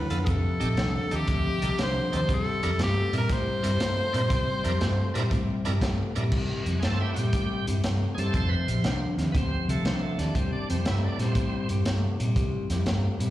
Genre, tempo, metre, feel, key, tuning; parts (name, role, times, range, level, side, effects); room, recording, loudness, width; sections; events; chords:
electric blues shuffle; 119 BPM; 4/4; swing 68% on 8ths; C mixolydian; A4 = 440 Hz
edgy tenor saxophone; melody; 0.0-5.8 s; G4 to C5; -30 LUFS; left 1 dB; plate reverb, slapback echo
electric guitar through a small old amp; riff; 0.0-13.3 s; F2 to A3; -31 LUFS; left 3 dB; slapback echo
bright tonewheel organ; accompaniment; 0.1-11.7 s; A3 to C5; -35 LUFS; right 4 dB; slow rotary speaker, overdrive, plate reverb, slapback echo
vintage muted fingered electric bass; bass; 0.1-13.3 s; F1 to Bb2; -28 LUFS; equal
crunchy breakbeat drum kit; drums; 0.1-13.3 s; crash cymbal, hi-hat, kick drum, snare drum; -30 LUFS; equal
light reverb; live gig heard through the venue's PA, recital hall reverb; -24 LUFS; side -14 dB against mid
0.0-6.3 A section; 6.3-13.3 B section
0.3 F7; 2.3 C7; 6.3 C; 8.3 F; 10.3 C5